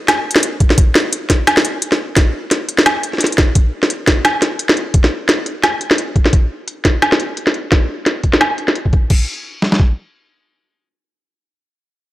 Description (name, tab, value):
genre	drum and bass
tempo	173 BPM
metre	4/4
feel	swing 57% on 16ths, half-time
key	none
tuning	none
part	organic electronic drum kit	drums	0.1-9.2 s	crash cymbal, hi-hat, snare drum	-14 LUFS	equal	low-pass filter on hats, low-pass filter on snare, low-pass filter on cymbals, low-pass filter on room
part	boom bap sampler-style drum kit	drums	0.6-9.9 s	kick drum, snare drum	-12 LUFS	equal	overdrive
room	light reverb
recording	dry, gritty hardware recording, transformer saturation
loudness	-12 LUFS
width	side -16 dB against mid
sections	0.0-9.1 A section; 9.1-11.9 B section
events	none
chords	none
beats	0.08 0.43 | 0.78 1.12 1.47 1.82 | 2.17 2.51 2.86 3.21 | 3.55 3.90 4.25 4.59 | 4.94 5.29 5.63 5.98 | 6.33 6.67 7.02 7.37 | 7.71 8.06 8.41 8.75 | 9.10 9.45 9.79